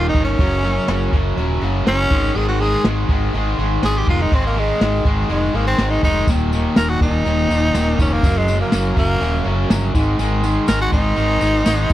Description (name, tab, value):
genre	classic rock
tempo	122 BPM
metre	4/4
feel	straight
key	unclear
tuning	A4 = 439 Hz
part	raspy tenor saxophone	melody	0.0-11.9 s	Ab3 to Bb4	-21 LUFS	equal	tape echo
part	distorted electric guitar	riff	0.0-11.9 s	Eb2 to Ab3	-20 LUFS	equal	distortion
part	overdriven fingered electric bass	bass	0.0-11.9 s	Eb1 to Ab1	-20 LUFS	equal	none
part	jazz brush drum kit	drums	0.1-11.9 s	hi-hat, kick drum, snare drum	-18 LUFS	equal	none
part	tambourine	percussion	6.3-11.9 s	none	-37 LUFS	left 6 dB	none
room	little or no reverb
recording	dry, close 1970s-style studio recording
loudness	-15 LUFS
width	side -14 dB against mid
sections	0.0-11.9 A section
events	tenor saxophone solo 0.0-11.9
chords	0.4 Gb5; 2.1 Ab5; 6.3 Eb5; 8.2 Gb; 9.9 Ab5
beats	| 0.40 0.89 1.38 1.87 | 2.36 2.85 3.34 3.83 | 4.32 4.81 5.30 5.79 | 6.28 6.77 7.26 7.75 | 8.24 8.73 9.22 9.71 | 10.19 10.68 11.17 11.66